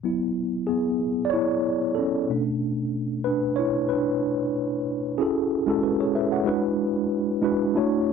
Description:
soul; 93 BPM; 4/4; swing 54% on 16ths; A4 = 440 Hz
mellow tine electric piano; solo; 0.0-8.1 s; B2 to F#5; -22 LUFS; equal; medium stereo tremolo
light reverb; dry, close 1970s-style studio recording; -22 LUFS; side -6 dB against mid
0.0-5.2 A section; 5.2-8.1 B section
tine electric piano solo 0.0-5.2
0.0 F#7sus4; 2.3 Bm11; 5.2 F#m9; 6.5 E9
| 0.05 0.69 1.33 1.98 | 2.62 3.27 3.91 4.55 | 5.19 5.84 6.48 7.12 | 7.76

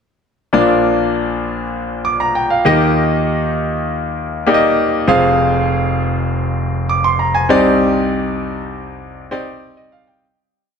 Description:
pop; 99 BPM; 4/4; straight; Bb mixolydian; A4 = 440 Hz
clear concert grand piano; solo; 0.5-10.4 s; F1 to D6; -14 LUFS; equal
moderate lush hall reverb, RT60 2.2 s; -13 LUFS; side -6 dB against mid
0.5-10.2 verse
fade-out 7.8-10.2
0.5 Bb; 2.7 Eb; 5.1 Fm; 7.5 Cmadd9
| 0.53 1.14 1.74 2.35 | 2.96 3.56 4.17 4.77 | 5.38 5.99 6.59 7.20 | 7.80 8.41 9.02 9.62

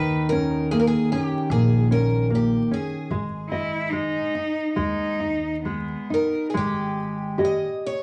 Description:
fado-style ballad; 65-75 BPM; 4/4; rubato; G# harmonic minor; A4 = 440 Hz
picked twelve-string acoustic guitar; melody; 0.0-8.0 s; G4 to Eb5; -30 LUFS; equal
nylon-string guitar; accompaniment; 0.0-8.0 s; D#3 to D#5; -26 LUFS; equal
upright bass; bass; 0.0-7.6 s; G#1 to D#2; -29 LUFS; equal
warm cello; second line; 3.5-6.5 s; B3 to E4; -30 LUFS; equal
wet club reverb, RT60 0.6 s; vinyl crackle; -24 LUFS; mono
0.0-6.6 A section; 6.6-8.0 B section
0.0 D#5; 3.1 G#m; 6.6 Abmaj7(no3)
0.70 1.50 2.30 | 3.11 3.93 4.77 5.66 | 6.55 7.41

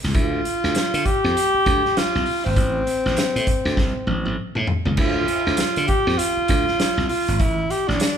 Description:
funk; 99 BPM; 4/4; swing 60% on 16ths; D minor; A4 = 436 Hz
glassy slap bass; bass; 0.0-8.0 s; G#1 to D3; -24 LUFS; equal
vintage drum kit; drums; 0.0-8.2 s; crash cymbal, hi-hat, kick drum, snare drum, toms; -23 LUFS; equal
breathy alto saxophone; melody; 0.1-8.2 s; C4 to G4; -21 LUFS; equal
light reverb; band playing live in one room; -18 LUFS; side -8 dB against mid
0.0-5.0 A section; 5.0-8.2 A section
drum fill 3.8-5.0
0.1 Dm; 2.6 Am; 5.0 Dm; 7.4 A7(no3)
| 0.15 0.75 1.35 1.96 | 2.56 3.17 3.77 4.38 | 4.98 5.59 6.19 6.80 | 7.40 8.01

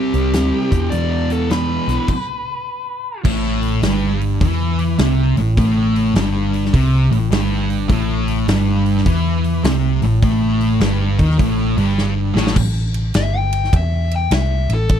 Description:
blues rock power trio and southern rock; 103 BPM; 4/4; swing 66% on 8ths; A minor; A4 = 441 Hz
dark smooth lead guitar; melody; 0.0-3.2, 13.2-15.0 s; G4 to G5; -23 LUFS; left 4 dB; overdrive
thick fuzz guitar; riff; 0.0-12.5 s; E2 to C4; -18 LUFS; equal; distortion
vintage muted picked electric bass; bass; 0.1-15.0 s; G1 to E2; -19 LUFS; equal
big rock drum kit; drums; 0.1-15.0 s; crash cymbal, hi-hat, kick drum, ride cymbal, snare drum; -21 LUFS; equal
little or no reverb; dry, close 1970s-style studio recording; -15 LUFS; side -9 dB against mid
0.0-3.2 A section; 3.2-12.6 B section; 12.6-15.0 C section
stop 2.1-3.2; drum fill 12.0-12.6; lead electric guitar solo 12.6-15.0
0.0 C5; 0.6 E5; 3.2 Am
0.33 | 0.92 1.50 2.08 2.66 | 3.25 3.83 4.41 4.99 | 5.57 6.15 6.73 7.32 | 7.90 8.48 9.06 9.64 | 10.22 10.81 11.39 11.97 | 12.56 13.14 13.73 14.31 | 14.90

